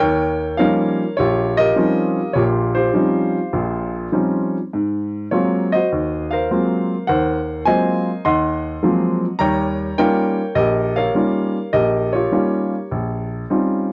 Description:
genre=solo jazz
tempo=102 BPM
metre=4/4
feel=swing 69% on 8ths, rubato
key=Eb mixolydian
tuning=A4 = 441 Hz
part: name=warm baby grand piano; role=solo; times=0.0-13.9 s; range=Bb1 to C6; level=-19 LUFS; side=equal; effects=none
room=light reverb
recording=worn, warbling old tape, cassette tape, warbly pitch drift, nothing above 10.5 kHz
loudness=-19 LUFS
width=mono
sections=0.0-13.9 A section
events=none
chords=0.0 Eb13; 4.7 Ab13; 9.4 Eb9

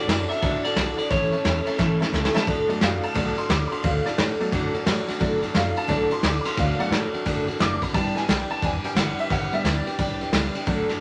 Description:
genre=rockabilly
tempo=176 BPM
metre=4/4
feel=swing 64% on 8ths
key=D major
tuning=A4 = 440 Hz
part: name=electric guitar through a small old amp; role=melody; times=0.0-2.3 s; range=C#5 to E5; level=-30 LUFS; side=equal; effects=none
part: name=picked steel-string acoustic guitar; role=accompaniment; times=0.0-11.0 s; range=A2 to B4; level=-29 LUFS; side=equal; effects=none
part: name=tack piano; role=accompaniment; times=0.0-10.9 s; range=F#3 to D6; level=-32 LUFS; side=equal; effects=none
part: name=upright bass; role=bass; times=0.0-11.0 s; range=E1 to A2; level=-32 LUFS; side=equal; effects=none
part: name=vintage brush drum kit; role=drums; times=0.1-10.9 s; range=kick drum, ride cymbal, snare drum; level=-27 LUFS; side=equal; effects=none
room=light reverb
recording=none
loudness=-23 LUFS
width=mono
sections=0.0-2.5 A section; 2.5-11.0 B section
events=drum fill 1.8-2.5; honky-tonk piano solo 2.5-11.0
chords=0.0 D; 1.1 A; 2.5 D; 7.9 G

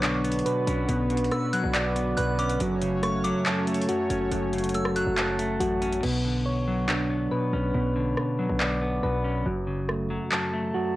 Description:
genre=hip hop, trap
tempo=140 BPM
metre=4/4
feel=half-time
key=B minor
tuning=A4 = 440 Hz
part: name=clean electric guitar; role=accompaniment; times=0.0-11.0 s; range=F#2 to C#4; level=-28 LUFS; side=left 1 dB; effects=low-pass filter, cassette tape
part: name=warm analog pad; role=sustained chords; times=0.0-6.0 s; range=D3 to C#5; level=-33 LUFS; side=equal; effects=chorus, cassette tape
part: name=soft electric-piano-like synth keys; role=arpeggios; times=0.0-11.0 s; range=F#3 to A5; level=-28 LUFS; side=right 1 dB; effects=chorus, low-pass filter, cassette tape, tape echo
part: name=hard-hitting 808-style bass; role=bass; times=0.0-10.2 s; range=F#1 to B1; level=-32 LUFS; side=equal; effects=none
part: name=trap drum kit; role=drums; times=0.0-10.4 s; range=crash cymbal, handclaps, hi-hat, rim click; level=-30 LUFS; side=equal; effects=cassette tape
part: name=delicate synth tine bell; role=second line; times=1.3-5.6 s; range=C#6 to F#6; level=-34 LUFS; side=equal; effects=chorus, cassette tape, tape echo
room=little or no reverb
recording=home recording on cassette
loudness=-24 LUFS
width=side -16 dB against mid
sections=0.0-6.0 A section; 6.0-11.0 B section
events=hi-hats muted 6.0-11.0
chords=0.0 Bmadd9; 2.6 F#m; 6.0 Bmadd9; 9.5 F#m

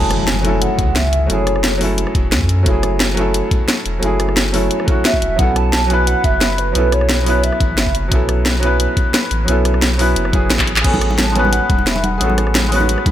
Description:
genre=liquid drum and bass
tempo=176 BPM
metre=4/4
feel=straight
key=F# minor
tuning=A4 = 440 Hz
part: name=hollow clarinet-like synth lead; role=melody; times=0.0-2.0, 5.0-7.9, 10.8-12.4 s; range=B4 to A5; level=-21 LUFS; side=right 2 dB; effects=lush chorus, tape echo
part: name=felt-muted upright piano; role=accompaniment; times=0.0-13.1 s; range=F#3 to B4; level=-18 LUFS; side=equal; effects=tape echo
part: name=sub bass with octave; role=bass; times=0.0-13.1 s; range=E1 to F#2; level=-18 LUFS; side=equal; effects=none
part: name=impact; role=sound effects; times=0.0-1.3 s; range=none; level=-25 LUFS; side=equal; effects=none
part: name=garage drum kit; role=drums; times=0.1-13.1 s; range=crash cymbal, handclaps, hi-hat, rim click, snare drum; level=-19 LUFS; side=equal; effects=none
part: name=electronic kick drum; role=drums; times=0.8-13.1 s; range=none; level=-17 LUFS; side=equal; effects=none
part: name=congas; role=percussion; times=10.9-13.1 s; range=none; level=-23 LUFS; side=right 2 dB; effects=none
room=light reverb, digital ambience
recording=none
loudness=-13 LUFS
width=side -11 dB against mid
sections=0.0-13.1 A section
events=impact 0.0-1.3; drum fill 10.6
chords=0.0 F#m9; 5.4 B9sus4; 10.7 Amaj13

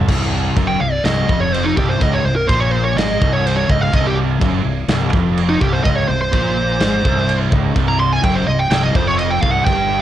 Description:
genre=heavy metal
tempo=125 BPM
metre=4/4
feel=straight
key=C phrygian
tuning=A4 = 439 Hz
part: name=distorted electric guitar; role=riff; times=0.0-10.0 s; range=C2 to Bb2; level=-22 LUFS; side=right 9 dB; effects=distortion, cassette tape
part: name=sludgy distorted guitar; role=riff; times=0.0-10.0 s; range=C2 to Bb2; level=-20 LUFS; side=left 6 dB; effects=overdrive, cassette tape
part: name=growling fingered electric bass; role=bass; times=0.0-10.0 s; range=C1 to Bb1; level=-22 LUFS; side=equal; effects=overdrive
part: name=modern studio drum kit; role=drums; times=0.1-9.8 s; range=crash cymbal, kick drum, snare drum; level=-20 LUFS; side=equal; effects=cassette tape
part: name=high-gain lead guitar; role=melody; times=0.7-10.0 s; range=Eb4 to C6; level=-19 LUFS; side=right 1 dB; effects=distortion, cassette tape, tape echo
room=little or no reverb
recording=home recording on cassette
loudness=-14 LUFS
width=side -12 dB against mid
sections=0.1-10.0 A section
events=lead electric guitar solo 0.1-10.0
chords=0.1 C5

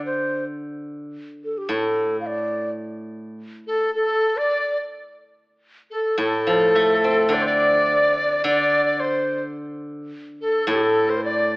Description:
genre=chinese traditional, Chinese chamber ensemble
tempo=107 BPM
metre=2/4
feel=rubato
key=D yu mode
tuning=A4 = 440 Hz
part: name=mellow xiao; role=melody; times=0.0-11.6 s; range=G4 to F5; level=-21 LUFS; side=equal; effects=none
part: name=steel-string zither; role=accompaniment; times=0.0-3.4, 6.2-11.6 s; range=A2 to C4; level=-26 LUFS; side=equal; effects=none
part: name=bright reedy large dizi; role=second line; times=3.7-11.6 s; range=G4 to D5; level=-22 LUFS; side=left 1 dB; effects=none
room=moderate recital hall reverb, RT60 1.4 s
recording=AM radio sound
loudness=-18 LUFS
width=side -26 dB against mid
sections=0.0-2.8 A section; 2.8-11.6 B section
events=none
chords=none

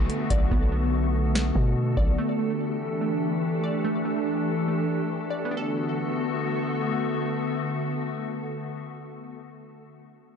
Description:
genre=hip hop, atmospheric cloud-rap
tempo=144 BPM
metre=4/4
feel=half-time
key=B minor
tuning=A4 = 440 Hz
part: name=glassy FM pad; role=sustained chords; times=0.0-9.5 s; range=D3 to A4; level=-27 LUFS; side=left 1 dB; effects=ensemble chorus, built-in reverb, sidechain pumping
part: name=glassy wavetable pluck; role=arpeggios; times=0.0-9.6 s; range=A3 to D5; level=-32 LUFS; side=right 2 dB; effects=chorus, ping-pong delay
part: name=long sustained 808-style bass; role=bass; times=0.0-2.2 s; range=B1 to B2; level=-25 LUFS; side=equal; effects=none
part: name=downlifter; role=sound effects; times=0.0-2.2 s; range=none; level=-45 LUFS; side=equal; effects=none
part: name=booming analog drum machine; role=drums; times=0.1-2.2 s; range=hi-hat, kick drum, snare drum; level=-24 LUFS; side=equal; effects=none
room=light reverb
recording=nothing above 10.8 kHz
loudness=-24 LUFS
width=side -7 dB against mid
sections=0.0-5.5 A section; 5.5-8.8 B section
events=none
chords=0.0 Bm7; 2.2 A7sus4; 5.5 Bm7

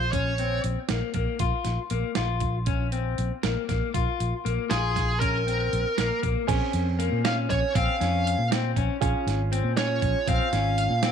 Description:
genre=progressive instrumental, band music in an uneven meter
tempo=236 BPM (eighths)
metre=5/8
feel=straight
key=Bb minor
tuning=A4 = 440 Hz
part: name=high-gain lead guitar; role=melody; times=0.0-0.6, 4.7-11.1 s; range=Ab4 to F5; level=-28 LUFS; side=right 2 dB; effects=distortion
part: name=fretless electric bass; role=bass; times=0.0-11.1 s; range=Ab1 to Bb2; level=-27 LUFS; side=equal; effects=none
part: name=electric guitar at the edge of break-up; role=arpeggios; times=0.1-11.1 s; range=Bb3 to F4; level=-30 LUFS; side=left 11 dB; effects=spring reverb
part: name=dusty soul sampler-style drum kit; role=drums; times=0.1-11.1 s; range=crash cymbal, hi-hat, kick drum, snare drum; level=-30 LUFS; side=right 4 dB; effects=none
part: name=warm grand piano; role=accompaniment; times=6.5-11.1 s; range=C4 to Ab4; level=-33 LUFS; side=right 12 dB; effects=none
room=light reverb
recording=1960s-style stereo with parts hard left and right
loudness=-23 LUFS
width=side -8 dB against mid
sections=0.0-6.5 A section; 6.5-11.1 B section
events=none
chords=0.0 Bb5; 6.5 Bbm9; 9.0 Db

